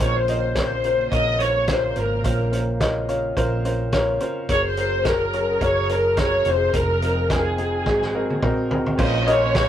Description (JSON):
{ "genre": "piano-driven pop", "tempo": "107 BPM", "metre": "4/4", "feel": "swing 56% on 16ths", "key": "Bb minor", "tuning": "A4 = 440 Hz", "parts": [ { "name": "warm studio violin section", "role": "melody", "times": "0.0-9.7 s", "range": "Ab4 to Eb5", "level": "-22 LUFS", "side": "left 1 dB", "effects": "none" }, { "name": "warm concert grand piano", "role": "accompaniment", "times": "0.0-9.7 s", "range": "Ab2 to Ab5", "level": "-24 LUFS", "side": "equal", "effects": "none" }, { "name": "sweeping resonant pad", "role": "sustained chords", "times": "0.0-9.7 s", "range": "Db3 to Bb4", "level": "-36 LUFS", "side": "right 1 dB", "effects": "chorus" }, { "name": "vintage muted fingered electric bass", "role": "bass", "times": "0.0-9.7 s", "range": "F1 to Bb1", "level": "-26 LUFS", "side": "equal", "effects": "none" }, { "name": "loose indie drum kit", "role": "drums", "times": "0.3-9.7 s", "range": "crash cymbal, hi-hat, kick drum, snare drum, toms", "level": "-25 LUFS", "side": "equal", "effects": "none" }, { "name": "direct-recorded clean electric guitar", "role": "riff", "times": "9.0-9.7 s", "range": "Bb2 to C5", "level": "-30 LUFS", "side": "right 3 dB", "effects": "none" } ], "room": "wet booth ambience, RT60 0.2 s", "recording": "rough rehearsal-room recording, tube saturation", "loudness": "-19 LUFS", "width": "side -10 dB against mid", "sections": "0.0-9.0 A section", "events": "drum fill 7.9-9.0", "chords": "0.0 Bbmadd9; 4.5 Gbadd9; 6.5 Fm7; 7.9 Ab7; 9.0 Bbmadd9", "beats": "0.56 1.12 1.68 | 2.24 2.81 3.37 3.93 | 4.49 5.05 5.62 6.18 | 6.74 7.30 7.86 8.42 | 8.98 9.55" }